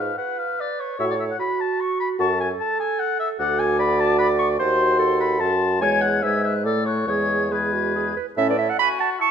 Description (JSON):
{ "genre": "quick classical-period movement for wind quintet", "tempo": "147 BPM", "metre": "3/4", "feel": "rubato", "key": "F# minor", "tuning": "A4 = 441 Hz", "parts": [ { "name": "warm oboe", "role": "second line", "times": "0.0-9.3 s", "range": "E4 to C#6", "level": "-24 LUFS", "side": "left 5 dB", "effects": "none" }, { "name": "clear clarinet", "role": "accompaniment", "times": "0.0-9.3 s", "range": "F#4 to C#6", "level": "-24 LUFS", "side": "right 9 dB", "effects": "none" }, { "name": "warm bassoon", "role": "bass", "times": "0.0-8.7 s", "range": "D2 to A2", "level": "-27 LUFS", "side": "right 1 dB", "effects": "none" }, { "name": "mellow hollow silver concert flute", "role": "melody", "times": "1.0-9.3 s", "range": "B4 to G#6", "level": "-27 LUFS", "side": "left 7 dB", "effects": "none" }, { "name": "warm French horn", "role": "accompaniment", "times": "1.0-8.5 s", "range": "G#3 to F#4", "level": "-26 LUFS", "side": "equal", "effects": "none" } ], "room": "moderate recital hall reverb, RT60 1.5 s", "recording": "none", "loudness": "-19 LUFS", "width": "side -7 dB against mid", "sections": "0.0-8.4 A section", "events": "none", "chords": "0.0 C#7 (rootless); 1.0 F#m/A; 2.2 F#m; 3.4 D; 4.6 D#dim7; 5.8 E; 6.7 A; 7.1 E; 8.4 A", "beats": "0.18 0.59 | 1.00 1.40 1.80 | 2.20 2.60 3.00 | 3.40 3.79 4.20 | 4.60 5.01 5.42 | 5.83 6.24 6.66 | 7.08 7.52 7.95 | 8.38 8.79 9.21" }